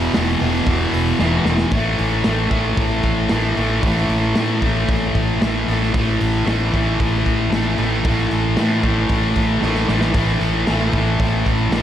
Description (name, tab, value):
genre	garage rock duo or trio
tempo	114 BPM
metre	4/4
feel	straight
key	unclear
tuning	A4 = 443 Hz
part	thick fuzz guitar	riff	0.0-11.8 s	E2 to A3	-18 LUFS	equal	distortion
part	fingered electric bass	bass	0.0-11.8 s	E1 to A2	-22 LUFS	equal	none
part	raw garage drum kit	drums	0.1-11.8 s	hi-hat, kick drum, snare drum	-22 LUFS	equal	none
room	light reverb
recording	none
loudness	-16 LUFS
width	side -10 dB against mid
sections	0.0-1.7 A section; 1.7-11.8 B section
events	drum fill 1.2-1.7, 9.6-10.2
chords	0.0 E5; 1.7 A5